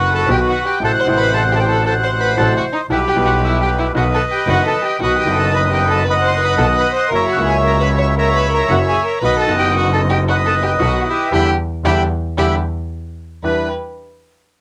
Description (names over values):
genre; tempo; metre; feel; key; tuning
tango; 114 BPM; 4/4; rubato; E harmonic minor; A4 = 440 Hz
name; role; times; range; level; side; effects
bandoneon; melody; 0.0-13.7 s; F#4 to C#6; -19 LUFS; equal; none
warm violin; second line; 0.0-13.7 s; D#4 to C#5; -23 LUFS; equal; cassette tape
clear upright piano; accompaniment; 0.0-13.7 s; F#1 to G4; -24 LUFS; equal; cassette tape
rich double bass; bass; 0.0-13.7 s; F#1 to E2; -22 LUFS; equal; none
muted studio string section; stabs; 5.0-13.7 s; A#3 to G4; -32 LUFS; equal; none
room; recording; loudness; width
light reverb; home recording on cassette; -16 LUFS; mono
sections
0.0-13.4 A section; 13.4-14.6 B section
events
band accent 11.3-13.4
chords
0.0 B; 0.8 F#dim/A; 2.9 Em/B; 4.0 B; 7.1 F#7; 9.2 B; 11.3 Em7; 12.9 N.C.; 13.4 Em7